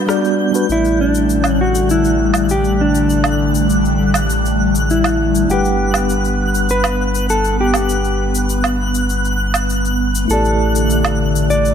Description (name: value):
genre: sunset chillout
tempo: 100 BPM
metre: 4/4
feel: straight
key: unclear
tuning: A4 = 440 Hz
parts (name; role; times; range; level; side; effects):
- mellow tine electric piano; accompaniment; 0.0-11.7 s; G3 to F#5; -21 LUFS; equal; medium stereo tremolo, auto-pan, low-pass filter, ping-pong delay
- airy breathy pad; sustained chords; 0.0-11.7 s; D3 to B3; -20 LUFS; left 1 dB; chorus, phaser
- twinkling granular texture; texture; 0.0-11.7 s; F#6 to G6; -24 LUFS; equal; built-in reverb
- electronic rim click, cabasa and woodblock; drums; 0.1-11.7 s; none; -22 LUFS; right 2 dB; overdrive
- mellow electric guitar; melody; 0.7-11.7 s; D4 to D5; -18 LUFS; equal; ping-pong delay
- warm sub bass; bass; 0.7-11.7 s; G1 to A1; -19 LUFS; equal; none
room: moderate lush hall reverb, RT60 1.8 s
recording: none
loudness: -13 LUFS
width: side -8 dB against mid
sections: 0.7-11.7 A section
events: break 0.0-0.7; filter sweep on tine electric piano 0.7-11.7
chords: 0.0 Gmaj7; 0.7 A7sus4; 5.5 Gmaj7; 10.3 A7sus4